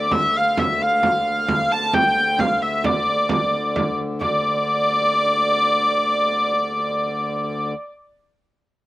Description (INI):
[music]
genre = medieval dance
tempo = 88 BPM (dotted quarters)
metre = 6/8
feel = straight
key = D minor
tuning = A4 = 440 Hz
[part]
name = dark hurdy-gurdy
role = melody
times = 0.0-7.7 s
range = D5 to A5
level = -18 LUFS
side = equal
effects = slapback echo
[part]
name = hand-pumped harmonium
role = drone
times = 0.0-7.7 s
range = D2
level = -28 LUFS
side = left 1 dB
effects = stereo widening
[part]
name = frame drum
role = percussion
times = 0.1-4.4 s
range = none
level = -24 LUFS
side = right 4 dB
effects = none
[sound]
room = little or no reverb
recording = recorded outdoors, with no room sound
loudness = -17 LUFS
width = side -16 dB against mid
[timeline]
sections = 0.0-4.2 A section; 4.2-6.9 B section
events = none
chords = none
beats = | 0.12 0.80 | 1.48 2.16 | 2.85 3.53 | 4.21 4.89 | 5.57 6.25